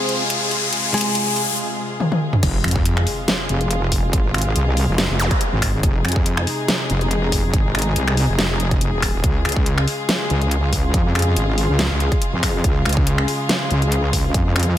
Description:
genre	heavy wobble dubstep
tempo	141 BPM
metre	4/4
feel	swing 54% on 16ths, half-time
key	F minor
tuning	A4 = 440 Hz
part	direct-recorded clean electric guitar	melody	0.0-1.5 s	Ab3 to C5	-25 LUFS	right 1 dB	tape echo
part	dark studio string section	sustained chords	0.0-14.8 s	C3 to Ab4	-25 LUFS	left 1 dB	sidechain pumping
part	riser, impact and zap	sound effects	0.0-5.3 s	none	-23 LUFS	left 2 dB	none
part	dubstep drum kit	drums	0.1-14.7 s	crash cymbal, finger snaps, hi-hat, snare drum, toms	-22 LUFS	equal	none
part	wobble bass	bass	2.4-14.8 s	Eb1 to F2	-19 LUFS	equal	chorus, overdrive
part	electronic kick drum	drums	2.4-14.4 s	none	-20 LUFS	equal	none
room	light reverb, digital ambience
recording	none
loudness	-16 LUFS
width	side -12 dB against mid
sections	0.0-2.4 A section; 2.4-14.8 B section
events	build-up 0.0-2.4; riser 0.0-1.6; drum fill 2.0-2.4; drop 2.4-14.8; impact 2.4-4.1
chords	0.0 Fm; 9.2 Db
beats	0.30 | 0.73 1.15 1.58 2.00 | 2.43 2.85 3.28 3.71 | 4.13 4.56 4.98 5.41 | 5.83 6.26 6.68 7.11 | 7.54 7.96 8.39 8.81 | 9.24 9.66 10.09 10.51 | 10.94 11.37 11.79 12.22 | 12.64 13.07 13.49 13.92 | 14.34 14.77

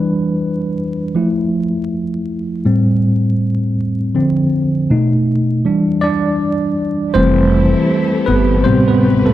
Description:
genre	lo-fi hip hop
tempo	80 BPM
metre	4/4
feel	swing 64% on 16ths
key	unclear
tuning	A4 = 440 Hz
part	tine electric piano	accompaniment	0.0-9.3 s	A2 to D5	-14 LUFS	equal	slow stereo tremolo, low-pass filter
part	warm studio string section	sustained chords	7.1-9.3 s	E3 to B4	-23 LUFS	left 2 dB	low-pass filter
part	upright bass	bass	7.1-9.3 s	F1 to A1	-16 LUFS	equal	none
room	light reverb, small room ambience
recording	vinyl crackle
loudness	-13 LUFS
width	side -13 dB against mid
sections	0.0-7.1 A section; 7.1-9.3 B section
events	tine electric piano solo 0.0-7.1, 7.1-9.3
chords	0.0 Em7; 1.1 Fmaj7; 2.6 Am7; 4.1 Dm7; 4.9 B7; 5.6 Em7; 7.1 Fmaj9#11; 8.6 Am9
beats	0.39 | 1.14 1.89 2.64 3.39 | 4.14 4.89 5.64 6.39 | 7.14 7.89 8.64

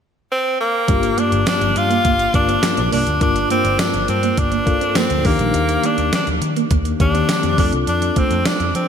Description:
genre	1980s-style pop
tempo	103 BPM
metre	4/4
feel	straight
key	G minor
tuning	A4 = 440 Hz
part	edgy tenor saxophone	melody	0.3-8.9 s	Bb3 to F4	-19 LUFS	equal	none
part	tine electric piano	accompaniment	0.9-8.9 s	G2 to Bb4	-22 LUFS	left 5 dB	medium tremolo
part	mellow electric guitar	riff	0.9-8.6 s	G3 to Eb4	-26 LUFS	right 7 dB	ensemble chorus
part	vintage muted picked electric bass	bass	0.9-8.9 s	G1 to F3	-22 LUFS	equal	none
part	clean 12-bit digital drum machine	drums	0.9-8.9 s	hi-hat, kick drum, snare drum	-21 LUFS	equal	gated reverb
part	tambourine	percussion	1.5-8.6 s	none	-39 LUFS	right 7 dB	none
room	moderate lush hall reverb, RT60 2.5 s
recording	bright 1980s-style digital production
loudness	-15 LUFS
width	side -7 dB against mid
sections	0.9-8.9 A section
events	none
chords	0.0 N.C.; 0.9 Gm7; 5.3 Ebmaj7; 7.6 Dm7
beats	0.30 | 0.88 1.47 2.05 2.63 | 3.21 3.80 4.38 4.96 | 5.54 6.13 6.71 7.29 | 7.87 8.46

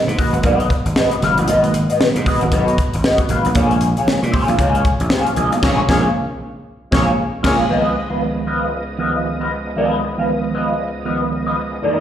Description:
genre	funk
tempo	116 BPM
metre	4/4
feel	swing 60% on 16ths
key	unclear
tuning	A4 = 439 Hz
part	mellow tine electric piano	stabs	0.0-12.0 s	C#2 to D#4	-22 LUFS	right 4 dB	fast stereo tremolo, slapback echo
part	electric guitar through a small old amp	accompaniment	0.1-12.0 s	E4 to E#5	-19 LUFS	left 1 dB	wah, phaser, slapback echo
part	gritty slap bass	bass	0.1-7.6 s	F#1 to A#2	-19 LUFS	equal	overdrive
part	crisp fusion drum kit	drums	0.1-7.6 s	crash cymbal, hi-hat, kick drum, snare drum	-20 LUFS	equal	none
part	warm horn section	second line	5.6-7.6 s	A#3 to C#5	-24 LUFS	left 1 dB	slapback echo
part	overdriven tonewheel organ	sustained chords	7.7-12.0 s	C#2 to D#5	-26 LUFS	right 1 dB	slow rotary speaker, chorus vibrato
room	light reverb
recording	live gig heard through the venue's PA, recital hall reverb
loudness	-15 LUFS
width	side -10 dB against mid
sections	0.0-7.7 A section; 7.7-12.0 B section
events	band accent 5.6-7.7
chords	0.0 G#m7; 3.6 A#m7; 7.7 C#9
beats	0.44 0.96 | 1.48 2.00 2.52 3.04 | 3.56 4.08 4.59 5.11 | 5.63 6.15 6.67 7.18 | 7.70 8.22 8.74 9.25 | 9.77 10.29 10.80 11.32 | 11.84

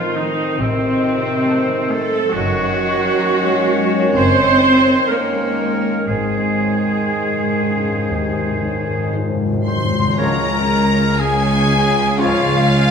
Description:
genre	classical, slow romantic movement for symphony orchestra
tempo	57-71 BPM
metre	4/4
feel	rubato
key	Db major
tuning	A4 = 441 Hz
part	rich chamber violin section	melody	0.0-12.9 s	F5 to C6	-26 LUFS	left 4 dB	none
part	clear clarinet	second line	0.0-12.9 s	F4 to Db5	-26 LUFS	left 1 dB	none
part	clear oboe	second line	0.0-12.6 s	C4 to Db5	-25 LUFS	equal	none
part	rich studio violin section	second line	0.0-12.9 s	C5 to C6	-24 LUFS	left 2 dB	none
part	mellow bassoon	accompaniment	0.0-12.6 s	Db3 to Eb3	-26 LUFS	right 3 dB	none
part	rich chamber viola section	accompaniment	0.0-12.9 s	Ab3 to C5	-20 LUFS	right 3 dB	none
part	mellow French horn section	sustained chords	0.0-12.6 s	C3 to Db4	-25 LUFS	left 3 dB	none
part	concert harp	arpeggios	0.0-12.9 s	Gb2 to Eb5	-24 LUFS	left 5 dB	none
part	clear chamber cello section	bass	0.0-12.9 s	C3 to C4	-22 LUFS	right 1 dB	none
part	rich chamber double bass section	bass	0.6-12.9 s	Gb1 to Eb2	-25 LUFS	right 2 dB	none
part	timpani	percussion	6.1-11.6 s	Ab2 to Db3	-25 LUFS	left 2 dB	none
part	hollow large flute ensemble	second line	9.7-12.9 s	F5 to C6	-26 LUFS	left 2 dB	none
part	warm trumpet section	stabs	9.7-12.9 s	F4 to C5	-23 LUFS	right 1 dB	none
part	bright trombone section	sustained chords	10.2-12.6 s	Ab2 to F3	-30 LUFS	right 2 dB	none
part	warm tuba	bass	10.2-12.9 s	Db2	-24 LUFS	right 3 dB	none
room	wet recital hall reverb, RT60 1.5 s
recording	minimal, uncompressed stereo recording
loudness	-14 LUFS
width	side -6 dB against mid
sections	0.0-10.2 A section; 10.2-12.9 B section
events	timpani fill 6.1-10.2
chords	0.0 Adim7; 2.3 Ebm7/Gb; 6.1 Ab; 10.2 Db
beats	0.59 1.46 | 2.34 3.19 4.16 5.08 | 6.08 7.11 8.12 9.14 | 10.18 11.18 12.18

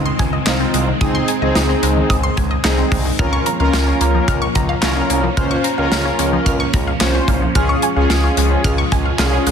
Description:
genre	synth-pop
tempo	110 BPM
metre	4/4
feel	straight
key	unclear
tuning	A4 = 440 Hz
part	analog synth brass	accompaniment	0.0-9.5 s	C4 to C5	-20 LUFS	equal	chorus
part	phased string machine	sustained chords	0.0-9.5 s	Eb3 to Db4	-23 LUFS	equal	ensemble chorus, phaser
part	smooth synth bass	bass	0.0-9.5 s	C2 to Db2	-19 LUFS	equal	none
part	resonant blip pluck	arpeggios	0.1-9.5 s	Eb3 to F6	-22 LUFS	right 1 dB	phaser, ping-pong delay
part	modern studio drum kit	drums	0.2-9.5 s	handclaps, hi-hat, kick drum, snare drum	-20 LUFS	left 1 dB	none
room	moderate lush hall reverb, RT60 2.3 s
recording	dense, heavily limited modern master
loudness	-14 LUFS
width	side -7 dB against mid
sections	0.0-9.5 A section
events	none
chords	0.0 Ab; 3.2 Bbm; 7.6 Db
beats	0.47 | 1.01 1.56 2.10 2.65 | 3.19 3.74 4.28 4.83 | 5.37 5.92 6.46 7.01 | 7.56 8.10 8.65 9.19

